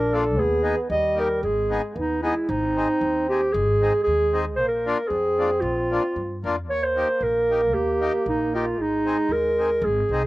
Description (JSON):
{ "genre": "alpine folk, alpine dance band", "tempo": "114 BPM", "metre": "2/4", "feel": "straight", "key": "Ab major", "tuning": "A4 = 439 Hz", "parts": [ { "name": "mellow clarinet", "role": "melody", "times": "0.0-10.3 s", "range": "Eb4 to D#5", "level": "-22 LUFS", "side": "equal", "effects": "none" }, { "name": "clear euphonium", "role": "second line", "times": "0.0-10.3 s", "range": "G3 to D4", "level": "-29 LUFS", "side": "right 3 dB", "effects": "slapback echo" }, { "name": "upright bass", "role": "bass", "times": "0.0-10.3 s", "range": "G#1 to G2", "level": "-30 LUFS", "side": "equal", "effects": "none" }, { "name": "accordion", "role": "accompaniment", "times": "0.1-10.2 s", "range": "A#3 to G#4", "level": "-28 LUFS", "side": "left 3 dB", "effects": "none" } ], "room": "little or no reverb", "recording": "recorded outdoors, with no room sound", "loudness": "-20 LUFS", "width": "side -18 dB against mid", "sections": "0.0-2.5 A section; 2.5-10.3 B section", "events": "none", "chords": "0.4 G#m/D#; 0.9 D#; 1.4 G#m; 2.5 Ab; 4.6 Bb7; 6.7 Eb; 8.8 Ab" }